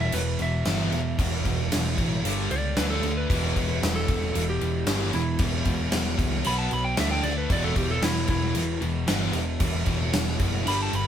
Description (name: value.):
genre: hard rock.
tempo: 114 BPM.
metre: 4/4.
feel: straight.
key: E minor.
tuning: A4 = 440 Hz.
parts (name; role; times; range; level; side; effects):
lightly driven lead guitar; melody; 0.0-11.1 s; E4 to B5; -30 LUFS; equal; none.
distorted electric guitar; riff; 0.0-11.1 s; E2 to D4; -33 LUFS; left 1 dB; distortion.
overdriven semi-hollow guitar; riff; 0.0-11.1 s; E2 to D4; -33 LUFS; right 7 dB; none.
scooped high-gain guitar; riff; 0.0-11.1 s; E2 to D4; -34 LUFS; left 9 dB; distortion.
picked electric bass; bass; 0.0-11.1 s; E1 to D2; -28 LUFS; equal; none.
gated 80s drum kit; drums; 0.1-11.1 s; crash cymbal, kick drum, snare drum; -27 LUFS; equal; none.
room: light reverb.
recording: band playing live in one room.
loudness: -23 LUFS.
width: side -9 dB against mid.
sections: 0.0-11.1 A section.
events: lead electric guitar solo 0.0-11.1.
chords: 0.0 E5; 2.2 G5; 2.8 D5; 3.3 E5; 6.5 B5; 7.0 D5; 7.5 E5.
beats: 0.14 0.67 | 1.19 1.72 2.25 2.77 | 3.30 3.82 4.35 4.88 | 5.40 5.93 6.45 6.98 | 7.51 8.03 8.56 9.09 | 9.61 10.14 10.66.